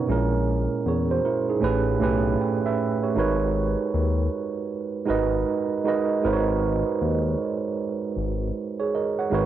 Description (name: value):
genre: hip hop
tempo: 78 BPM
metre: 4/4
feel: swing 64% on 16ths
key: G# minor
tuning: A4 = 442 Hz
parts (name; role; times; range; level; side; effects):
- mellow tine electric piano; accompaniment; 0.0-9.5 s; A2 to G5; -23 LUFS; right 4 dB; overdrive, medium stereo tremolo, cassette tape
- smooth synth bass; bass; 0.1-9.5 s; G#1 to E2; -26 LUFS; left 2 dB; none
room: moderate spring reverb, RT60 2.5 s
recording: home recording on cassette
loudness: -22 LUFS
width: side -11 dB against mid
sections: 0.0-9.3 A section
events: none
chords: 0.1 A#m7b5; 1.6 A9; 3.2 G#m11